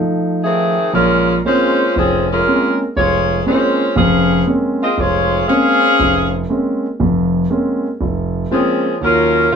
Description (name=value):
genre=jazz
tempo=119 BPM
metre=4/4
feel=swing 68% on 8ths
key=Bb minor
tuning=A4 = 440 Hz
part: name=warm concert grand piano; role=accompaniment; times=0.0-9.6 s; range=F1 to Eb4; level=-16 LUFS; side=right 1 dB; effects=none
part: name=dark saxophone section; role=melody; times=0.4-9.6 s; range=Eb3 to F5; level=-14 LUFS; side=left 1 dB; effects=none
room=moderate club reverb, RT60 0.5 s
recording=minimal, uncompressed stereo recording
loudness=-13 LUFS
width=side -6 dB against mid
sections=0.9-9.6 A section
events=none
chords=0.0 F7#9; 0.9 Bbm9; 9.0 Ebm9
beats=0.41 | 0.92 1.43 1.94 2.44 | 2.95 3.45 3.96 4.46 | 4.97 5.47 5.98 6.48 | 6.99 7.49 8.00 8.50 | 9.01 9.51